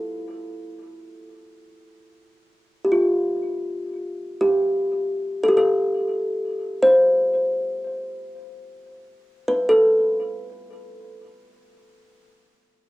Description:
world meditative, free-time meditation music; free time; A minor; A4 = 442 Hz
kalimba; solo; 0.0-12.1 s; F4 to C5; -19 LUFS; equal; cassette tape, tape echo
wet small room reverb, RT60 0.5 s; home recording on cassette; -19 LUFS; side -19 dB against mid
0.0-12.9 A section
free time

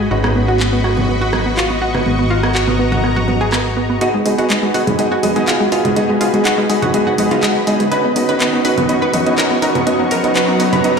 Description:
progressive house; 123 BPM; 4/4; straight; G# minor; A4 = 442 Hz
supersaw pad; sustained chords; 0.0-11.0 s; F#4 to C#6; -21 LUFS; equal; low-pass filter
analog pluck; arpeggios; 0.0-11.0 s; G#3 to B4; -17 LUFS; equal; chorus, digital delay
clear concert grand piano; stabs; 0.0-11.0 s; G#3 to D#5; -19 LUFS; right 2 dB; digital delay
fat analog bass; bass; 0.0-11.0 s; G#1 to B1; -22 LUFS; left 1 dB; high-pass filter
electronic rim click and congas; percussion; 0.2-10.8 s; -22 LUFS; right 1 dB
pop drum kit; drums; 0.6-11.0 s; handclaps, hi-hat; -22 LUFS; left 1 dB
riser; sound effects; 5.2-11.0 s; -25 LUFS; left 1 dB
moderate lush hall reverb, RT60 1.8 s; played on a big sound system in a bare room, large studio reverb; -13 LUFS; side -5 dB against mid
0.0-4.0 A section; 4.0-11.0 B section
filter sweep on synth pluck 0.0-4.0; build-up 4.0-11.0; filter sweep on supersaw synth 4.0-11.0; riser 5.2-11.0
0.1 Badd9/G#; 4.0 G#m7; 7.9 Badd9/G#
| 0.11 0.60 1.09 1.57 | 2.06 2.55 3.04 3.53 | 4.01 4.50 4.99 5.48 | 5.96 6.45 6.94 7.43 | 7.92 8.40 8.89 9.38 | 9.87 10.36 10.84

